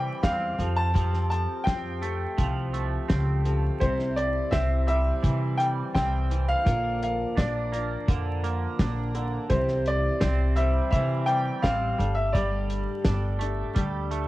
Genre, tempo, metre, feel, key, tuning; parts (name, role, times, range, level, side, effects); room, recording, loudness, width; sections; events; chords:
folk rock and heartland rock; 84 BPM; 4/4; straight; C mixolydian; A4 = 440 Hz
bright baby grand piano; melody; 0.0-14.3 s; C5 to A5; -28 LUFS; equal; analog delay
picked steel-string acoustic guitar; accompaniment; 0.0-14.3 s; G2 to C5; -35 LUFS; left 5 dB; cassette tape
twangy electric guitar; riff; 0.0-14.3 s; Bb2 to D4; -33 LUFS; right 6 dB; analog chorus, cassette tape
upright bass; bass; 0.0-14.3 s; G1 to C3; -27 LUFS; equal
damped 70s drum kit; drums; 0.2-14.3 s; hi-hat, kick drum, snare drum; -26 LUFS; equal; vintage 12-bit sampler grit, cassette tape
mellow tonewheel organ; sustained chords; 3.8-14.3 s; E3 to C5; -41 LUFS; equal
moderate studio reverb, RT60 0.7 s; home recording on cassette, vinyl crackle; -23 LUFS; side -17 dB against mid
0.0-14.3 A section
0.0 C; 0.6 Fadd9; 3.8 C; 6.7 Bb; 9.5 C; 12.0 Gsus2